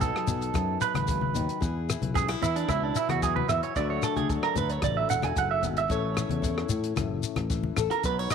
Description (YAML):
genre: highlife guitar band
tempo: 112 BPM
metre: 4/4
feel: straight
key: A major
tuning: A4 = 440 Hz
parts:
  - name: fingerpicked steel-string acoustic guitar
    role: accompaniment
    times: 0.0-8.3 s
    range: F#2 to A4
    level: -33 LUFS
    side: left 15 dB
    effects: none
  - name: clean electric guitar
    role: arpeggios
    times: 0.0-8.3 s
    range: D4 to G#5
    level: -29 LUFS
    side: right 10 dB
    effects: spring reverb, tape echo
  - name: fingered electric bass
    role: bass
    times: 0.0-8.3 s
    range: E1 to E3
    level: -32 LUFS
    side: left 1 dB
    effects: none
  - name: compact cocktail drum kit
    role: drums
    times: 0.0-8.3 s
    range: hi-hat, kick drum, rim click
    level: -33 LUFS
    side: left 1 dB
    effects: none
  - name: congas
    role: percussion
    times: 0.0-7.9 s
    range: none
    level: -34 LUFS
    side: left 6 dB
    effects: none
  - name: shekere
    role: percussion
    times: 0.0-8.3 s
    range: none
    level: -34 LUFS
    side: left 6 dB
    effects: none
room: light reverb, studio reverb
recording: 1960s-style stereo with parts hard left and right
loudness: -25 LUFS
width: side -7 dB against mid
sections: 0.0-8.3 A section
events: clean electric guitar solo 0.0-8.3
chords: 0.0 B; 1.6 E; 3.8 D; 5.9 A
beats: 0.01 0.54 1.08 | 1.61 2.15 2.69 3.22 | 3.76 4.29 4.83 5.36 | 5.90 6.43 6.97 7.51 | 8.04